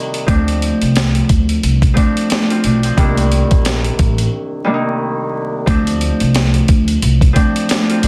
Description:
hip hop, boom-bap hip-hop; 89 BPM; 4/4; swing 58% on 16ths; D phrygian; A4 = 440 Hz
Celtic harp; accompaniment; 0.0-8.1 s; C2 to A4; -19 LUFS; equal; cassette tape, high-pass filter, low-pass filter
boom bap sampler-style drum kit; drums; 0.1-8.1 s; hi-hat, kick drum, snare drum; -18 LUFS; equal
upright bass; bass; 0.3-8.1 s; A1 to D2; -18 LUFS; equal
light reverb; dense, heavily limited modern master, vinyl crackle; -15 LUFS; mono
0.0-5.7 A section; 5.7-8.1 B section
break 4.3-5.7
0.3 Dm7; 3.0 Cm7; 5.7 Dm7

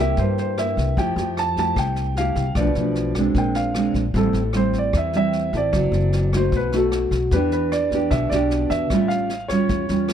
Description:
bossa nova; 151 BPM; 4/4; straight; A minor; A4 = 441 Hz
warm grand piano; melody; 0.0-10.1 s; A4 to A5; -25 LUFS; right 1 dB
nylon-string guitar; accompaniment; 0.0-10.1 s; G2 to A4; -22 LUFS; right 1 dB
upright bass; bass; 0.0-10.1 s; F#1 to G2; -24 LUFS; left 1 dB
jazz brush drum kit; drums; 0.2-10.1 s; kick drum, rim click, snare drum; -28 LUFS; left 1 dB
light reverb; dark, warm production; -18 LUFS; side -9 dB against mid
0.0-7.3 A section; 7.3-10.1 B section
0.0 C7; 1.0 Fmaj9; 2.6 Bm7b5; 3.4 Bb9; 4.2 Am7; 5.7 F#m7b5; 6.5 B7; 7.3 Em7; 8.9 A7b13

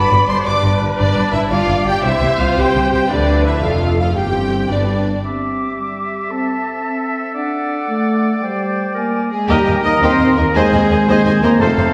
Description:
cinematic, heroic adventure film score; 114 BPM (dotted quarters); 6/8; straight; C major; A4 = 440 Hz
clear symphonic violin section; melody; 0.0-5.2, 9.3-11.9 s; G4 to D6; -25 LUFS; equal
concert flute; second line; 0.0-11.9 s; D5 to Eb6; -25 LUFS; equal
rich symphonic violin section; second line; 0.0-5.2, 9.5-11.8 s; D4 to Ab5; -28 LUFS; equal
warm symphonic viola section; accompaniment; 0.0-5.0, 9.5-11.9 s; G4 to Eb5; -24 LUFS; equal
clear trombone section; sustained chords; 0.0-5.1, 9.5-11.9 s; D3 to D4; -26 LUFS; equal
mellow French horn section; sustained chords; 0.0-11.9 s; G3 to D5; -22 LUFS; equal
clear symphonic cello section; bass; 0.1-5.0, 9.5-11.9 s; Eb2 to D3; -24 LUFS; equal
rich studio double bass section; bass; 0.1-5.1, 9.5-11.8 s; F1 to Eb2; -23 LUFS; equal
bright clarinet; second line; 5.2-11.9 s; G4 to C5; -27 LUFS; equal
clear oboe; second line; 5.2-11.9 s; D5 to Bb5; -27 LUFS; equal
clear tuba; bass; 9.5-11.9 s; F1 to Eb2; -26 LUFS; equal
wet scoring stage reverb, RT60 1.9 s; heard from further back in the room; -16 LUFS; mono
0.0-5.2 A section; 5.2-9.5 B section; 9.5-11.9 C section
0.0 G; 2.0 C; 3.1 Dm; 4.2 C/G; 4.7 G; 5.2 Cadd9; 6.3 Am/C; 7.4 D; 8.4 Gsus4; 9.0 Bb7; 9.5 Eb; 10.6 Ab/Eb

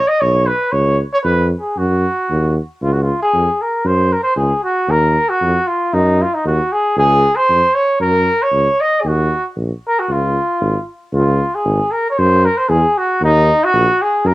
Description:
balkan folk; 115 BPM; 2/4; straight; Db major; A4 = 439 Hz
mellow trumpet; melody; 0.0-14.3 s; Eb4 to Eb5; -14 LUFS; equal; cassette tape
mellow tuba; bass; 0.2-14.3 s; Ab1 to F#2; -16 LUFS; equal
moderate studio reverb, RT60 0.6 s; home recording on cassette; -13 LUFS; side -17 dB against mid
0.0-2.8 A section; 2.8-11.1 B section; 11.1-14.3 B section
0.0 Bsus2; 0.7 C#; 1.8 D#m; 2.8 Db; 3.8 Gb5; 4.9 Ebmadd9; 5.9 Ebmadd11; 7.0 Db; 8.0 Gb5; 9.1 Eb5; 10.1 Db5; 12.2 Eadd9; 13.2 Eb5

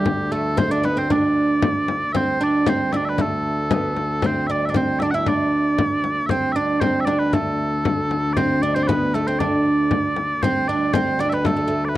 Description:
medieval dance; 116 BPM; 2/4; straight; A4 = 440 Hz
mellow small bagpipes; melody; 0.0-12.0 s; G4 to F#5; -24 LUFS; equal
oud; second line; 0.0-11.9 s; A3 to E4; -22 LUFS; right 3 dB
warm viola da gamba; drone; 0.0-12.0 s; D2; -26 LUFS; left 1 dB
frame drum; percussion; 0.1-11.7 s; -24 LUFS; left 4 dB
light reverb; dry, close 1970s-style studio recording; -18 LUFS; side -15 dB against mid
0.0-2.1 A section; 2.1-10.4 B section; 10.4-12.0 B section

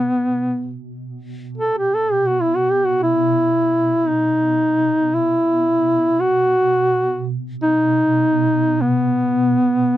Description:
caucasian folk, Caucasian lament; free time; B major; A4 = 442 Hz
mellow duduk; melody; 0.0-10.0 s; B3 to A4; -16 LUFS; equal
shimmering ambient pad; drone; 0.0-10.0 s; B2; -25 LUFS; right 2 dB; chorus, built-in reverb, phaser
light reverb; dry, close 1970s-style studio recording; -15 LUFS; side -13 dB against mid
1.0-10.0 A section

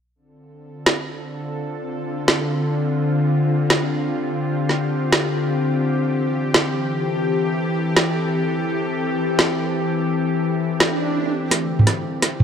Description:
half-time drum and bass; free time; D minor; A4 = 440 Hz
bowed-like drone; sustained chords; 0.8-12.4 s; D3 to A4; -21 LUFS; left 2 dB; built-in reverb
drum and bass drum kit; drums; 0.9-12.4 s; hi-hat, snare drum, toms; -18 LUFS; right 1 dB
swell; sound effects; 10.9-11.5 s; -24 LUFS; right 3 dB
dark detuned saw bass; bass; 11.5-12.2 s; C2 to D2; -35 LUFS; right 1 dB
moderate lush hall reverb, RT60 2.0 s; dark, warm production; -18 LUFS; side -8 dB against mid
0.2-11.5 A section
swell 10.9-11.5; drum fill 11.5-12.4
0.2 Dm7; 5.8 Am7; 11.5 Dm7

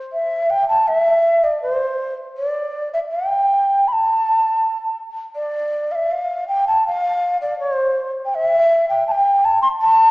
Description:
andean folk; 80 BPM; 2/4; straight; A minor; A4 = 444 Hz
mellow large quena; solo; 0.1-10.1 s; C5 to C6; -16 LUFS; equal
wet recital hall reverb, RT60 1.6 s; recorded in a church or concert hall, small speaker sound; -16 LUFS; side -22 dB against mid
0.0-5.3 A section; 5.3-10.1 A section

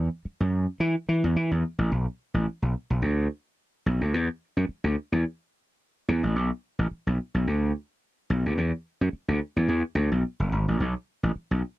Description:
funk; 108 BPM; 4/4; swing 56% on 16ths; B dorian; A4 = 440 Hz
gritty slap bass; solo; 0.0-11.6 s; F#1 to E3; -23 LUFS; equal; overdrive
light reverb; dry, close 1970s-style studio recording; -25 LUFS; side -17 dB against mid
0.0-1.9 A section; 1.9-11.8 B section

